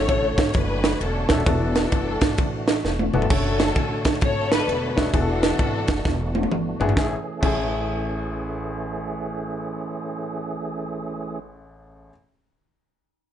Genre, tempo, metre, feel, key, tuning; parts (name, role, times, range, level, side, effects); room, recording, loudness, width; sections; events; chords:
uptempo gospel; 131 BPM; 4/4; swing 64% on 8ths; A major; A4 = 440 Hz
warm studio string section; melody; 0.0-6.5 s; C#4 to C#5; -27 LUFS; left 3 dB
clear baby grand piano; accompaniment; 0.0-12.1 s; A1 to C#5; -29 LUFS; left 4 dB
tonewheel organ; sustained chords; 0.0-11.4 s; D3 to C#5; -30 LUFS; right 3 dB; slow rotary speaker, overdrive, chorus vibrato
upright bass; bass; 0.0-12.1 s; D#1 to A1; -28 LUFS; equal
crisp fusion drum kit; drums; 0.1-7.6 s; crash cymbal, kick drum, ride cymbal, snare drum, toms; -22 LUFS; right 1 dB
light reverb, studio reverb; nothing above 10.8 kHz; -21 LUFS; side -10 dB against mid
0.0-3.3 A section; 3.3-7.0 B section; 7.0-10.6 C section
drum fill 2.8-3.3, 6.1-7.0
0.0 Dmaj7/F#; 1.5 E9sus4; 3.3 Dmaj7/F#; 5.1 E9sus4; 7.0 Amaj7